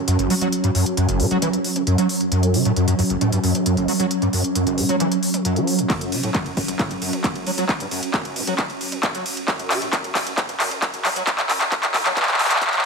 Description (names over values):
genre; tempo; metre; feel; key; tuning
driving peak-time techno; 134 BPM; 4/4; straight; unclear; A4 = 439 Hz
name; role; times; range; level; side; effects
swarming drone; drone; 0.0-12.9 s; F#3 to C#4; -23 LUFS; right 1 dB; built-in reverb, sidechain pumping
overdriven acid bass; riff; 0.1-12.8 s; F#1 to F#3; -23 LUFS; equal; distortion, ensemble chorus, sidechain pumping, ping-pong delay
techno drum kit; drums; 0.1-12.9 s; handclaps, hi-hat, ride cymbal, toms; -22 LUFS; equal; overdrive, sidechain pumping on hats, high-pass filter on hats, studio reverb, sidechain pumping on toms, high-pass filter on toms, high-pass filter on snare, sidechain pumping on cymbals, high-pass filter on cymbals
electronic kick drum; drums; 5.9-12.7 s; none; -25 LUFS; equal; overdrive, studio reverb
room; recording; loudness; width
moderate plate reverb, RT60 1.1 s; high-pass filter; -18 LUFS; side -4 dB against mid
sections
0.0-12.9 A section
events
build-up 0.0-12.9; filter sweep on acid bass 0.0-12.9; filter sweep 0.0-12.9; drum fill 5.9-12.9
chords
0.0 F#5